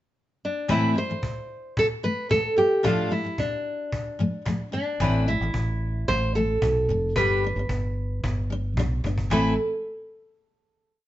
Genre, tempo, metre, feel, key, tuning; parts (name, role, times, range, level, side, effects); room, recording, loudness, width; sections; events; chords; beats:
acoustic pop; 111 BPM; 4/4; straight; A minor; A4 = 440 Hz
nylon-string guitar; melody; 0.4-9.6 s; D4 to C5; -26 LUFS; right 1 dB
picked steel-string acoustic guitar; accompaniment; 0.7-9.5 s; A2 to B4; -26 LUFS; left 2 dB
cajon; drums; 0.7-9.4 s; -31 LUFS; equal
fingered electric bass; bass; 5.0-9.6 s; F1 to B1; -26 LUFS; equal
light reverb; band playing live in one room, nothing above 7.8 kHz; -22 LUFS; side -14 dB against mid
0.0-0.7 pickup bar; 0.7-9.3 verse; 9.3-11.1 final chord
drum fill 8.8-9.3
0.0 N.C.; 0.7 Amadd9; 2.6 Dm/A; 4.7 Asus2; 7.2 G; 9.3 Amadd9
0.15 | 0.69 1.23 1.77 2.31 | 2.85 3.39 3.93 4.46 | 5.00 5.54 6.08 6.62 | 7.16 7.70 8.23 8.77 | 9.31